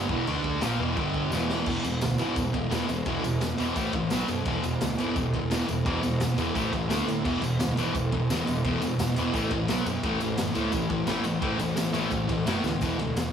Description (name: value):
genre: garage rock duo or trio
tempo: 172 BPM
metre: 4/4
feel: straight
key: unclear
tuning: A4 = 440 Hz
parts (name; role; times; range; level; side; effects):
- thick fuzz guitar; riff; 0.0-13.3 s; E2 to D4; -26 LUFS; equal; distortion
- fuzz picked electric bass; bass; 0.0-13.3 s; E1 to A2; -34 LUFS; equal; overdrive
- raw garage drum kit; drums; 0.1-13.3 s; crash cymbal, kick drum, ride cymbal, snare drum; -31 LUFS; equal; none
- tambourine; percussion; 0.6-13.2 s; none; -44 LUFS; left 3 dB; none
room: small room reverb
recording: small room ambience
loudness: -24 LUFS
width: side -8 dB against mid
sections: 0.0-1.7 A section; 1.7-12.8 B section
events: drum fill 1.3-1.7, 12.6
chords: 0.1 E5; 0.3 D5; 0.6 E5; 1.0 G5; 1.3 E5; 3.8 A5; 4.1 B5; 4.5 E5; 6.6 A5; 6.9 D5; 7.3 E5; 9.3 A5; 9.7 B5; 10.0 A5; 12.8 E5